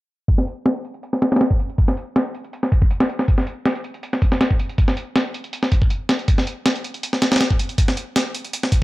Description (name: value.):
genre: drum and bass.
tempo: 160 BPM.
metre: 4/4.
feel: straight.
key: none.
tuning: none.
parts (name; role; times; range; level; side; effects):
breakbeat sampler-style drum kit; drums; 0.3-8.8 s; hi-hat, kick drum, snare drum; -17 LUFS; equal; low-pass filter on kick, low-pass filter on hats, low-pass filter on snare.
room: little or no reverb.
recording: none.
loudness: -18 LUFS.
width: side -19 dB against mid.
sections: 0.3-8.8 A section.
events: filter sweep on drum 0.3-8.8.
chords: none.